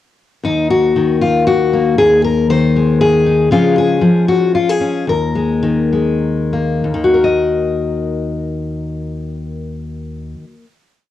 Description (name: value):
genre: folk, solo fingerstyle acoustic guitar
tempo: 95-119 BPM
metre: 3/4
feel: rubato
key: Eb minor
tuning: A4 = 440 Hz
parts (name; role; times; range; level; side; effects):
- fingerpicked steel-string acoustic guitar; solo; 0.4-10.6 s; Eb2 to Eb5; -13 LUFS; left 2 dB; cassette tape
room: wet small room reverb, RT60 0.5 s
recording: home recording on cassette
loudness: -12 LUFS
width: side -12 dB against mid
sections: 0.4-6.8 A section; 6.8-10.6 final chord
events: slowing down 3.5-6.8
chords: 0.4 Ebm; 2.0 Ab/Eb; 3.5 Db; 5.1 Eb5; 6.8 Ebm